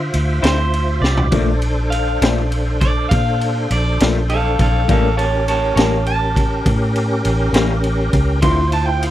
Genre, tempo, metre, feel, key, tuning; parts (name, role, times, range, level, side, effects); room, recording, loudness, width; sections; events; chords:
slow blues; 68 BPM (dotted quarters); 12/8; straight; A4 = 440 Hz
tonewheel organ; sustained chords; 0.0-9.1 s; C#4 to E5; -23 LUFS; equal; slow rotary speaker, overdrive, chorus vibrato
vintage muted fingered electric bass; bass; 0.0-9.1 s; A1 to Bb2; -18 LUFS; equal
raw garage drum kit; drums; 0.1-9.1 s; kick drum, ride cymbal, snare drum, toms; -20 LUFS; equal
electric guitar through a small old amp; second line; 0.4-9.1 s; A4 to C6; -21 LUFS; right 2 dB
electric guitar through a small old amp; accompaniment; 0.4-8.6 s; A2 to E4; -20 LUFS; left 6 dB; harmonic tremolo
little or no reverb; dry, close 1970s-style studio recording; -14 LUFS; side -13 dB against mid
0.0-9.1 A section
clean electric guitar solo 0.0-9.1; drum fill 1.0
0.0 Dm9; 1.3 Bbmaj7; 4.9 A7b9; 8.4 Dm9